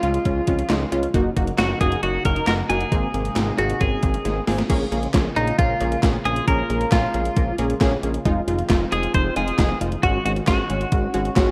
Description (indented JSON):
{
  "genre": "synth-pop",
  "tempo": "135 BPM",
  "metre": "4/4",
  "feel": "straight",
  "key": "Bb minor",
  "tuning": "A4 = 437 Hz",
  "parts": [
    { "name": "twelve-string electric guitar", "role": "melody", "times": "0.0-11.5 s", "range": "Eb4 to C5", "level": "-27 LUFS", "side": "equal", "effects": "spring reverb, tape echo, shimmer reverb" },
    { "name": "funky polysynth comp", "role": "accompaniment", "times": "0.0-11.5 s", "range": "Ab3 to Bb4", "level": "-28 LUFS", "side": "equal", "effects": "chorus, shimmer reverb" },
    { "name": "chorused pulse-width pad", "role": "sustained chords", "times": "0.0-11.5 s", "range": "C3 to Gb4", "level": "-34 LUFS", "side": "equal", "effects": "none" },
    { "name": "analog pluck", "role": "arpeggios", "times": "0.0-4.6 s", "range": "C4 to Gb4", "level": "-39 LUFS", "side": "equal", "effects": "none" },
    { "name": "fat analog bass", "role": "bass", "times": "0.0-11.5 s", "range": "F1 to Db2", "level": "-28 LUFS", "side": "equal", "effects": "none" },
    { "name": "gated 80s digital drum machine", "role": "drums", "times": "0.0-11.5 s", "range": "crash cymbal, handclaps, hi-hat, kick drum, snare drum", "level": "-25 LUFS", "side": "equal", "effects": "gated reverb, gated reverb snare, overdrive" }
  ],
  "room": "light reverb",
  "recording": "rough home demo mix",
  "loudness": "-21 LUFS",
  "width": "mono",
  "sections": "0.0-4.7 A section; 4.7-11.5 B section",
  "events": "drum fill 4.3-4.7",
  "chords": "0.0 Db; 1.1 Gb6; 2.9 Abadd9; 4.7 Bbm7; 8.3 Fm7; 10.0 Ab7sus4"
}